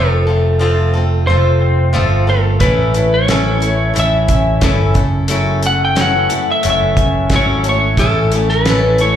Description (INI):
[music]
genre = folk rock and heartland rock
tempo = 89 BPM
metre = 4/4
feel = straight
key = unclear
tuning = A4 = 440 Hz
[part]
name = lightly driven lead guitar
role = melody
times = 0.0-9.2 s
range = A4 to G5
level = -16 LUFS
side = left 1 dB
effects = slapback echo, digital delay
[part]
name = picked swing-style acoustic guitar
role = accompaniment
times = 0.0-9.2 s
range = A2 to A4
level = -19 LUFS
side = left 4 dB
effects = slapback echo
[part]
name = electric guitar through a small old amp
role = riff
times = 0.0-9.2 s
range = F2 to F#4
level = -22 LUFS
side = right 2 dB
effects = lush chorus, slapback echo
[part]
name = picked electric bass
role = bass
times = 0.0-9.2 s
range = F1 to A1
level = -15 LUFS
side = right 1 dB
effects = none
[part]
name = damped 70s drum kit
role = drums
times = 2.6-9.1 s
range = hi-hat, kick drum, snare drum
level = -18 LUFS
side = right 1 dB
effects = none
[sound]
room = studio reverb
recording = live gig heard through the venue's PA, club reverb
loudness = -11 LUFS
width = side -10 dB against mid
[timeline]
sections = 0.0-9.2 A section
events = none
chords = 0.0 F; 2.6 A; 5.0 F#m7; 8.0 A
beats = 0.60 1.27 1.94 | 2.61 3.28 3.96 4.63 | 5.30 5.97 6.64 7.32 | 7.99 8.66